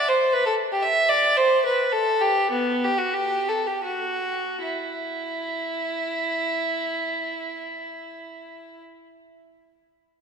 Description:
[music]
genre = classical, baroque-style suite movement for unaccompanied violin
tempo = 74-120 BPM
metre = 3/4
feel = rubato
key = E minor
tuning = A4 = 440 Hz
[part]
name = rich violin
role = solo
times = 0.0-8.8 s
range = B3 to E5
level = -22 LUFS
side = equal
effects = none
[sound]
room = wet church reverb, RT60 3.2 s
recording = minimal, uncompressed stereo recording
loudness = -21 LUFS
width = side -6 dB against mid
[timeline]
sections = 0.0-4.6 A section; 4.6-9.4 B section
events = slowing down 0.1-4.6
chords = none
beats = 0.34 | 0.85 1.39 1.94 | 2.52 3.14 3.83 | 4.62 5.42 6.21 | 7.00 7.79 8.58

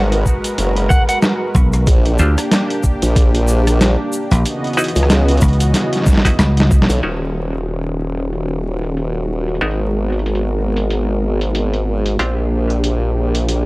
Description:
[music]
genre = glitch hop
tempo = 93 BPM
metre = 4/4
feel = swing 57% on 16ths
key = Eb phrygian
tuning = A4 = 439 Hz
[part]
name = warm analog pad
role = sustained chords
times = 0.0-13.7 s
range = Db3 to Eb5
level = -21 LUFS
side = equal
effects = chorus, vintage 12-bit sampler grit, sidechain pumping
[part]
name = formant-sweep wobble bass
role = bass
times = 0.0-13.7 s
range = Eb1 to Db2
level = -17 LUFS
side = equal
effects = chorus, tube saturation
[part]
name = boom bap sampler-style drum kit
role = drums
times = 0.1-13.6 s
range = crash cymbal, hi-hat, rim click, snare drum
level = -19 LUFS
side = equal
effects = low-pass filter on hats, low-pass filter on snare, low-pass filter on cymbals
[part]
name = electronic kick drum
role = drums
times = 0.3-6.9 s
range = none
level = -14 LUFS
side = equal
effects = none
[part]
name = egg shaker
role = percussion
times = 0.3-7.0 s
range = none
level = -32 LUFS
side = left 2 dB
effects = none
[part]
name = lightly driven lead guitar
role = melody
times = 0.9-1.2 s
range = Gb5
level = -21 LUFS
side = right 1 dB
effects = vintage 12-bit sampler grit, analog delay
[part]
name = dry thumbed slap bass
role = bass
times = 1.5-6.9 s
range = Bb1 to D2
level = -13 LUFS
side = equal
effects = none
[part]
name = muted clav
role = stabs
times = 2.2-13.7 s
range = Cb4 to C5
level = -23 LUFS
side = equal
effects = sidechain pumping, low-pass filter, analog delay
[sound]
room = digital ambience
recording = dry, gritty hardware recording, vinyl crackle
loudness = -14 LUFS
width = side -22 dB against mid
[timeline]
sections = 0.0-7.0 A section; 7.0-13.7 B section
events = drop 0.0-7.0; drum fill 5.7-7.0; band accent 6.8-7.1; filter sweep on drum 7.0-13.7; filter sweep on analog synth pad 7.0-13.7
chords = 0.0 Abm9; 1.9 Bb6; 4.5 Dbm11; 7.0 Ebm7; 9.6 Abm9; 12.2 Bb6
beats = 0.58 1.23 | 1.87 2.52 3.16 3.81 | 4.45 5.10 5.74 6.39 | 7.03 7.68 8.32 8.97 | 9.61 10.26 10.90 11.55 | 12.19 12.84 13.48

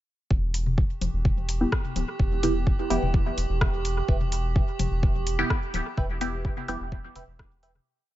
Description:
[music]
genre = dub techno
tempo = 127 BPM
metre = 4/4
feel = straight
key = E minor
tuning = A4 = 441 Hz
[part]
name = round analog bass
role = bass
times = 0.3-7.8 s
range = D1 to E1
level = -28 LUFS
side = equal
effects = sidechain pumping
[part]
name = electronic kick drum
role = drums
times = 0.3-7.5 s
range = none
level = -24 LUFS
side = equal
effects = small room ambience
[part]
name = metallic inharmonic drone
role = texture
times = 1.1-7.9 s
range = G4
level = -36 LUFS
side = right 8 dB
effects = chorus, built-in reverb, sidechain pumping
[part]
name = deep house drum kit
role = drums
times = 0.5-7.7 s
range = hi-hat, rim click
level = -33 LUFS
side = equal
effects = small room ambience, dub echo
[part]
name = electronic toms and congas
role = percussion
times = 0.7-7.8 s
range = none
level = -36 LUFS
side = left 5 dB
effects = sidechain pumping on toms, small room ambience, sidechain pumping on perc, dub echo
[part]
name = filtered dub chord stab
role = stabs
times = 1.6-7.9 s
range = B3 to G4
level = -29 LUFS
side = right 1 dB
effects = phaser, sidechain pumping, dub echo
[part]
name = wavetable chord stab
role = riff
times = 4.1-7.7 s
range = B4 to G5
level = -40 LUFS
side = right 2 dB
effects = sidechain pumping, dub echo
[sound]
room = digital ambience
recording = echo-heavy mix, nothing above 7.7 kHz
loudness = -23 LUFS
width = side -14 dB against mid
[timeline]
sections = 0.3-7.9 groove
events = fade-out 5.3-7.9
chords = 0.3 Em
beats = | 0.31 0.78 1.25 1.72 | 2.19 2.67 3.14 3.61 | 4.08 4.56 5.03 5.50 | 5.97 6.45 6.92 7.39

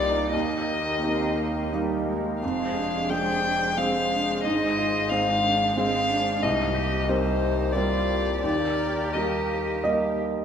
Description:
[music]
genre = neoclassical piano and strings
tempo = 89 BPM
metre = 3/4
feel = uneven beats, rubato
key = Eb major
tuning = A4 = 439 Hz
[part]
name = dark violin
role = melody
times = 0.0-9.8 s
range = C5 to G5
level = -26 LUFS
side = left 3 dB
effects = none
[part]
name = warm cello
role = second line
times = 0.0-10.2 s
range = G3 to G4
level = -32 LUFS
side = right 4 dB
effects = none
[part]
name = felt-muted upright piano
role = accompaniment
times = 0.0-10.4 s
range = C2 to Eb5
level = -27 LUFS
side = right 2 dB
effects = none
[part]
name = brassy analog pad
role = sustained chords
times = 0.0-10.4 s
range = Ab3 to C5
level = -33 LUFS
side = left 1 dB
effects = chorus
[part]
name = rich double bass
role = bass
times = 0.0-10.4 s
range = F1 to Eb2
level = -32 LUFS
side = equal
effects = none
[sound]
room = wet recital hall reverb, RT60 1.6 s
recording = recorded in a church or concert hall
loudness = -22 LUFS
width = side -8 dB against mid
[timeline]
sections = 0.0-10.4 A section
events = none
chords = 0.3 Eb; 2.4 Fm; 4.4 Ab; 6.4 Cm7; 8.4 Eb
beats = | 0.33 1.02 1.72 | 2.42 3.10 3.77 | 4.44 5.11 5.77 | 6.43 7.08 7.74 | 8.43 9.14 9.84

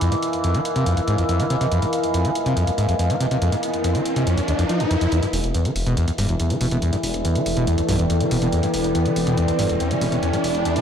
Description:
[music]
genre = driving peak-time techno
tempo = 141 BPM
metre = 4/4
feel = straight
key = unclear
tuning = A4 = 441 Hz
[part]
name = overdriven acid bass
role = riff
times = 0.0-10.8 s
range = D#2 to F3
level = -21 LUFS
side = equal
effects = distortion, lush chorus, tape echo
[part]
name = overtone-sweeping drone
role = drone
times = 0.0-10.8 s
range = E3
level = -25 LUFS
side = equal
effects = chorus, built-in reverb
[part]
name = electronic hi-hat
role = drums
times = 0.0-10.8 s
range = none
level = -32 LUFS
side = right 1 dB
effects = none
[part]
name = deep dark ambient pad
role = texture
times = 0.0-10.8 s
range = A4 to Ab5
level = -27 LUFS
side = equal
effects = chorus, built-in reverb
[part]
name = riser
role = sound effects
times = 2.5-10.8 s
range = none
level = -29 LUFS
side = left 1 dB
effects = none
[part]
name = detuned saw bass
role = bass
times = 5.3-10.6 s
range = E1 to B1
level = -28 LUFS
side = equal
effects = none
[sound]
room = light reverb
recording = dry, gritty hardware recording, transformer saturation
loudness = -18 LUFS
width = side -8 dB against mid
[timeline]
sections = 0.0-5.1 A section; 5.1-10.8 B section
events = riser 2.5-5.1, 5.1-10.8; build-up 5.1-10.8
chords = 0.0 Fm; 5.1 Em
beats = | 0.01 0.44 0.86 1.29 | 1.72 2.14 2.57 2.99 | 3.42 3.84 4.27 4.69 | 5.12 5.54 5.97 6.40 | 6.82 7.25 7.67 8.10 | 8.52 8.95 9.38 9.80 | 10.23 10.65

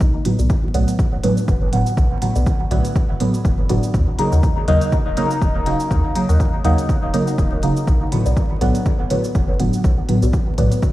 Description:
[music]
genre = dub techno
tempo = 122 BPM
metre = 4/4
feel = swing 56% on 16ths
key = unclear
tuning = A4 = 441 Hz
[part]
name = pure sine sub bass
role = bass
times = 0.0-10.7 s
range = Eb1 to Eb2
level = -19 LUFS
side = equal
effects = sidechain pumping
[part]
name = electronic kick drum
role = drums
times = 0.0-10.9 s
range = none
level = -20 LUFS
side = equal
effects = none
[part]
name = electronic shaker and hi-hat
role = drums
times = 0.0-10.9 s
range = none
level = -36 LUFS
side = right 1 dB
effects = none
[part]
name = deep mellow chord stab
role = stabs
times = 0.3-10.7 s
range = A2 to Eb4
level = -19 LUFS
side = equal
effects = chorus, phaser, sidechain pumping, dub echo
[part]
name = filtered dub chord stab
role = riff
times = 0.4-10.7 s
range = F#4 to Gb5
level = -32 LUFS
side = left 2 dB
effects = phaser, wide subtle chorus, sidechain pumping, dub echo
[sound]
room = light reverb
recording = played on a big sound system in a bare room, stone room reverb, vinyl crackle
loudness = -15 LUFS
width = side -16 dB against mid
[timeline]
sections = 0.0-10.9 A section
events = none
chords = 0.0 Bm7; 3.9 Ebm7; 7.9 Bm7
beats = | 0.01 0.50 0.99 1.48 | 1.97 2.46 2.96 3.45 | 3.94 4.43 4.92 5.42 | 5.91 6.40 6.89 7.38 | 7.88 8.37 8.86 9.35 | 9.84 10.33 10.83

